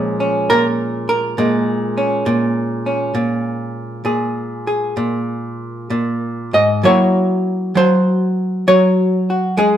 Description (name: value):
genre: solo jazz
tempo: 66 BPM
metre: 4/4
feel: swing 67% on 8ths, rubato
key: Bb minor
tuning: A4 = 442 Hz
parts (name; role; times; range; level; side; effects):
- archtop guitar, miked and amplified; solo; 0.0-9.8 s; Ab2 to Eb5; -15 LUFS; equal; none
room: wet stone room reverb, RT60 1.0 s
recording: band playing live in one room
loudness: -15 LUFS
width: side -10 dB against mid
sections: 0.0-9.8 A section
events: none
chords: 0.0 Bbm7; 6.8 Gb7